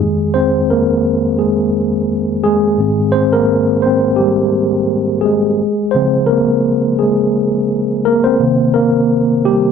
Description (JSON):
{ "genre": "soul", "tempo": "86 BPM", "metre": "4/4", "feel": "swing 58% on 16ths", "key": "F minor", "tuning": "A4 = 439 Hz", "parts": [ { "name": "mellow tine electric piano", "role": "solo", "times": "0.0-9.7 s", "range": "F2 to C5", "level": "-12 LUFS", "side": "equal", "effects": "medium stereo tremolo" } ], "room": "light reverb", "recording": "none", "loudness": "-12 LUFS", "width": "side -6 dB against mid", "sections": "0.0-9.7 A section", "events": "tine electric piano solo 0.0-9.7", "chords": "0.0 Fm7; 2.8 Abmaj7; 5.6 Dbmaj7; 8.4 Cm7" }